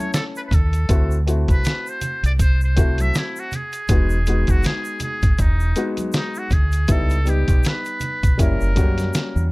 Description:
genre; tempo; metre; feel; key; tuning
hip hop, jazz-hop; 80 BPM; 4/4; swing 58% on 16ths; unclear; A4 = 442 Hz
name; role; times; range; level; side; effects
trumpet with metal mute; melody; 0.0-9.5 s; D#4 to E5; -27 LUFS; equal; none
warm upright piano; accompaniment; 0.0-9.5 s; G3 to A4; -26 LUFS; left 2 dB; none
dusty soul sampler-style drum kit; drums; 0.1-9.3 s; hi-hat, kick drum, snare drum; -19 LUFS; equal; none
tube shaker and congas; percussion; 0.1-9.5 s; none; -33 LUFS; right 1 dB; none
deep dub fingered electric bass; bass; 0.5-9.5 s; E1 to F#2; -19 LUFS; equal; none
room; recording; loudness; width
little or no reverb; none; -17 LUFS; side -23 dB against mid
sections
0.0-9.5 A section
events
none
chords
0.0 Dmaj7(no3) (rootless); 0.9 D9; 3.9 Emaj9; 6.9 C#m7b5; 8.4 F#7b9

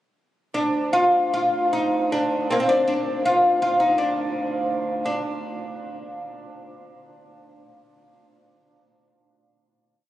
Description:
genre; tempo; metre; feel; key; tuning
medieval dance; 153-180 BPM; 3/4; straight; D phrygian; A4 = 445 Hz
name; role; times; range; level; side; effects
oud; melody; 0.5-5.2 s; Bb3 to F4; -20 LUFS; equal; none
hand-pumped harmonium; drone; 0.6-5.1 s; D2; -31 LUFS; right 2 dB; none
room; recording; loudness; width
wet cathedral reverb, RT60 6.0 s; recorded on a phone in the room, club reverb; -20 LUFS; side -14 dB against mid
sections
0.6-5.1 A section; 5.1-6.1 final note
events
speeding up 0.6-6.1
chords
none

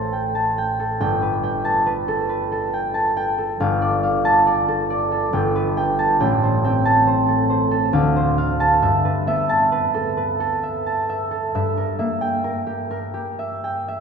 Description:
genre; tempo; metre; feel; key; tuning
classical, solo harp piece; 68 BPM; 3/4; rubato; unclear; A4 = 442 Hz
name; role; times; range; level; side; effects
concert harp; solo; 0.0-14.0 s; G1 to A5; -18 LUFS; right 1 dB; none
room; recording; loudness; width
wet cathedral reverb, RT60 5.2 s; recorded in a church or concert hall; -18 LUFS; side -6 dB against mid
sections
0.0-14.0 A section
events
none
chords
0.0 Am7; 1.0 Gadd9; 3.6 Dm/G; 5.3 Gadd9; 6.2 Am7; 7.9 Dm7; 8.8 G69; 11.5 Gm6

